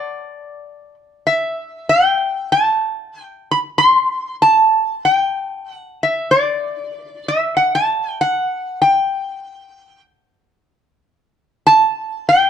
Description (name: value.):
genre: hawaiian.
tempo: 96 BPM.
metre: 4/4.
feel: swing 57% on 8ths.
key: unclear.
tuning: A4 = 440 Hz.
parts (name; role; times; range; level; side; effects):
metal-body resonator slide guitar; solo; 0.0-12.5 s; D5 to C6; -14 LUFS; equal; none.
room: light reverb.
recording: dark, warm production.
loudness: -14 LUFS.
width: side -8 dB against mid.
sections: 0.0-11.3 A section; 11.3-12.5 B section.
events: none.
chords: none.